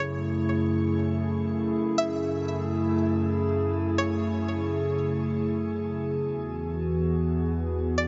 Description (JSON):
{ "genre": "hip hop", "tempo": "free time", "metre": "none", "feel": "none", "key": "F# minor", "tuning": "A4 = 440 Hz", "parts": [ { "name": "string-like resonator pluck", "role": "melody", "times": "0.0-4.2, 8.0-8.1 s", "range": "C#5 to E5", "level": "-37 LUFS", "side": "equal", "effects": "chorus, phaser, digital delay" }, { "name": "hollow soft pad", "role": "sustained chords", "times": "0.0-8.1 s", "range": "E2 to G#4", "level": "-27 LUFS", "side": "equal", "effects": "chorus" } ], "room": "wet shimmer reverb, RT60 6.3 s", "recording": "nothing above 7.7 kHz", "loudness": "-27 LUFS", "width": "mono", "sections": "0.0-8.1 A section", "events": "none", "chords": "0.0 F#m7; 6.2 Eadd9" }